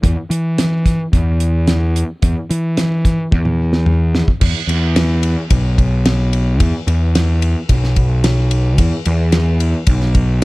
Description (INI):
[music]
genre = psychedelic rock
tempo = 110 BPM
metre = 4/4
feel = straight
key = unclear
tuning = A4 = 440 Hz
[part]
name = fuzz picked electric bass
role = bass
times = 0.0-10.4 s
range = B1 to E3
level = -14 LUFS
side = equal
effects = overdrive
[part]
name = damped 70s drum kit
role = drums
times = 0.0-10.3 s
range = crash cymbal, hi-hat, kick drum, ride cymbal, snare drum, toms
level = -17 LUFS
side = equal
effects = none
[sound]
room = little or no reverb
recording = echo-heavy mix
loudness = -13 LUFS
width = side -21 dB against mid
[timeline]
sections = 0.0-4.4 A section; 4.4-10.4 B section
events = drum fill 3.3-4.4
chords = none